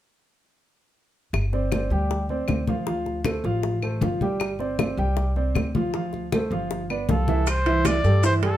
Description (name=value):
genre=Afro-Cuban jazz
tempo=156 BPM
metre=4/4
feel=straight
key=unclear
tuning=A4 = 439 Hz
part: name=upright bass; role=bass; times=1.3-8.6 s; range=G1 to G2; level=-25 LUFS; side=equal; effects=none
part: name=bongos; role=percussion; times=1.3-8.4 s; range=none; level=-33 LUFS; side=left 7 dB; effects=none
part: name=claves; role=percussion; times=1.3-8.0 s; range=none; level=-35 LUFS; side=left 2 dB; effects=none
part: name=congas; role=percussion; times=1.3-8.6 s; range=none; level=-28 LUFS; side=left 1 dB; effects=none
part: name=warm baby grand piano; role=accompaniment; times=1.5-8.6 s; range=E3 to G5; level=-26 LUFS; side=right 2 dB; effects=none
part: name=warm trumpet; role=melody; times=7.1-8.6 s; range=A4 to D5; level=-25 LUFS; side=equal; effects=none
part: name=maracas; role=percussion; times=7.5-8.4 s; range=none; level=-36 LUFS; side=left 8 dB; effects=none
part: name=timbales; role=percussion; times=7.5-8.6 s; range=none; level=-33 LUFS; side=right 9 dB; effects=none
room=moderate studio reverb, RT60 0.6 s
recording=none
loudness=-22 LUFS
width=side -12 dB against mid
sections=1.3-7.5 A section; 7.5-8.6 B section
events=none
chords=1.3 G7sus4; 2.9 Dm7; 4.4 G7sus4; 5.9 Dm7; 6.7 G7; 7.5 C6